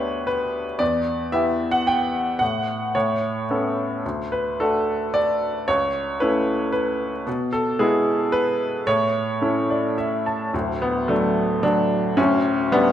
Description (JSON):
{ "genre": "classical, lyrical solo piano", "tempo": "111 BPM", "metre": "3/4", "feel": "rubato", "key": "D major", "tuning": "A4 = 441 Hz", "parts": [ { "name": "bright baby grand piano", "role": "solo", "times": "0.0-12.9 s", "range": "D1 to A5", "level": "-20 LUFS", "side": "equal", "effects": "none" } ], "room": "moderate concert hall reverb, RT60 2.2 s", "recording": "minimal, uncompressed stereo recording", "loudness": "-20 LUFS", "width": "side -10 dB against mid", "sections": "0.0-10.5 A section; 10.5-12.9 A section", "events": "grand piano fill 9.4-10.5", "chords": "0.0 G/D; 0.8 Em; 2.4 N.C.; 3.0 Aadd9; 4.0 D; 5.7 A/C#; 7.3 E/B; 8.9 A; 10.5 D; 12.2 G/D" }